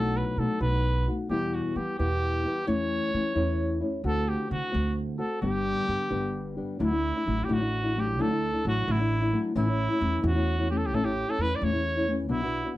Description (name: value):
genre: mexican folk, mariachi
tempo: 87 BPM (dotted quarters)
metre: 6/8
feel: straight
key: G major, D major from 6.8 s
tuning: A4 = 438 Hz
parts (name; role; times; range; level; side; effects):
- bright trumpet; melody; 0.0-12.7 s; E4 to D5; -30 LUFS; right 1 dB; slapback echo
- nylon-string guitar; accompaniment; 0.0-12.8 s; E2 to G4; -29 LUFS; left 2 dB; none
- upright bass; bass; 0.0-12.6 s; G1 to E3; -30 LUFS; right 1 dB; none
room: little or no reverb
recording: dry, close 1970s-style studio recording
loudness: -25 LUFS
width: side -16 dB against mid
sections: 0.0-6.8 A section; 6.8-12.8 B section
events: none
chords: 0.0 B7; 1.3 Em; 2.7 A/E; 4.1 D7; 5.4 G; 6.8 Dadd9; 9.6 A